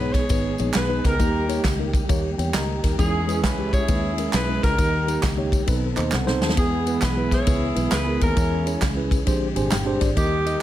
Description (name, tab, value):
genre	uptempo gospel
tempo	134 BPM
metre	4/4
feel	swing 65% on 8ths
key	unclear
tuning	A4 = 440 Hz
part	mellow saxophone section	melody	0.0-10.6 s	A#3 to C#5	-26 LUFS	equal	plate reverb
part	mellow tine electric piano	accompaniment	0.0-10.6 s	G#2 to A#5	-26 LUFS	equal	medium stereo tremolo, plate reverb
part	mellow tonewheel organ	sustained chords	0.0-10.6 s	D3 to A4	-30 LUFS	right 2 dB	slow rotary speaker, chorus vibrato
part	fingered electric bass	bass	0.0-10.5 s	G1 to E2	-26 LUFS	equal	none
part	natural country drum kit	drums	0.1-10.5 s	kick drum, ride cymbal, snare drum	-24 LUFS	equal	none
part	tambourine and handclaps	percussion	0.1-10.5 s	none	-33 LUFS	right 4 dB	none
room	light reverb, small room ambience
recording	none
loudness	-19 LUFS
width	side -13 dB against mid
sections	0.0-10.6 A section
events	tine electric piano fill 2.3-3.0, 5.7-6.6, 9.3-10.2; drum fill 6.1-6.6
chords	0.0 G#m; 1.2 D#; 3.0 C#m; 4.8 D#; 5.7 B7b9; 6.6 E; 8.4 C#m/E; 9.3 A#13